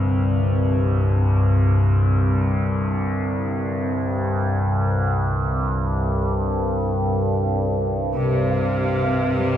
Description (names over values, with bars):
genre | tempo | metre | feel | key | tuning
ambient | free time | none | none | unclear | A4 = 437 Hz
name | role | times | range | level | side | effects
bronze singing bowl | arpeggios | 0.0-2.2 s | C4 | -32 LUFS | right 2 dB | diffuse ambient delay
overtone-sweeping drone | drone | 0.0-9.6 s | C2 to G2 | -19 LUFS | equal | chorus, built-in reverb, phaser
bubbling stepped-filter texture | texture | 8.5-9.6 s | F5 | -28 LUFS | right 6 dB | chorus, built-in reverb
bright studio cello section | sustained chords | 8.2-9.6 s | C3 to G3 | -21 LUFS | equal | none
room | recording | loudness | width
wet cathedral reverb, RT60 6.0 s | dark, warm production, nothing above 10.8 kHz | -19 LUFS | side -10 dB against mid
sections
0.0-8.2 A section; 8.2-9.6 A section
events
none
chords
0.0 C5